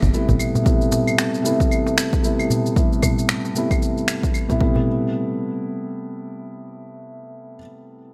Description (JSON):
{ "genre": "organic downtempo", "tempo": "114 BPM", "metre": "4/4", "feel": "swing 59% on 16ths", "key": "A minor", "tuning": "A4 = 440 Hz", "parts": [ { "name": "felt-muted upright piano", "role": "accompaniment", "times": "0.0-8.1 s", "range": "C3 to E4", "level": "-25 LUFS", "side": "equal", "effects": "sidechain pumping, tape echo" }, { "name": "electronic kick drum", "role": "drums", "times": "0.0-4.7 s", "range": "none", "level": "-23 LUFS", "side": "equal", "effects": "overdrive, studio reverb" }, { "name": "electronic shaker, claves and finger snaps", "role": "drums", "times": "0.0-4.6 s", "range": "none", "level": "-27 LUFS", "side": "equal", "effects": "overdrive, studio reverb" }, { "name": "darbuka", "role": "percussion", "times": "0.0-4.8 s", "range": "none", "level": "-28 LUFS", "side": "equal", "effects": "none" } ], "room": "light reverb, small room ambience", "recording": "none", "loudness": "-20 LUFS", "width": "mono", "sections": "0.0-4.9 A section; 4.9-8.1 B section", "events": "none", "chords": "0.0 Am7" }